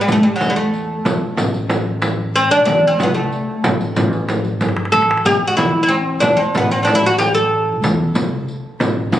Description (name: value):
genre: Arabic maqam ensemble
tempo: 93 BPM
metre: 4/4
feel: straight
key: A maqam rast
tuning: A4 = 437 Hz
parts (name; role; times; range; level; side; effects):
- oud; melody; 0.0-8.5 s; F#3 to A4; -16 LUFS; equal; none
- upright bass; bass; 0.1-9.2 s; G#1-50c to E2; -23 LUFS; left 1 dB; none
- darbuka; percussion; 0.1-9.2 s; none; -27 LUFS; right 1 dB; none
- frame drum; percussion; 0.1-9.2 s; none; -21 LUFS; right 2 dB; none
- riq; percussion; 0.1-9.2 s; none; -27 LUFS; left 4 dB; none
room: moderate recital hall reverb, RT60 1.5 s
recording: recorded on a phone in the room, club reverb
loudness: -14 LUFS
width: side -12 dB against mid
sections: 0.0-9.2 A section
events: drum fill 4.6-5.3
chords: none